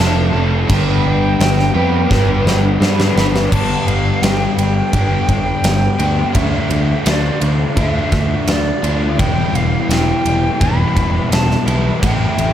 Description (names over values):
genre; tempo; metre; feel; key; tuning
rock, shoegaze and dream pop; 85 BPM; 4/4; straight; G mixolydian; A4 = 440 Hz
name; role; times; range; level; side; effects
silver concert flute; melody; 0.0-12.5 s; D5 to B5; -22 LUFS; right 1 dB; diffuse ambient delay
crunchy overdriven guitar; riff; 0.0-12.5 s; E2 to B4; -17 LUFS; left 1 dB; lush chorus
picked electric bass; bass; 0.0-12.5 s; E1 to G2; -18 LUFS; equal; none
huge arena drum kit; drums; 0.0-12.5 s; crash cymbal, kick drum, ride cymbal, snare drum; -19 LUFS; equal; none
room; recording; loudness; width
light reverb, studio ambience; none; -13 LUFS; side -10 dB against mid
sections
0.0-3.5 A section; 3.5-12.5 B section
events
drum fill 2.1-3.5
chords
0.0 F; 0.7 G; 6.4 Dmadd9; 9.2 Em; 12.0 Am7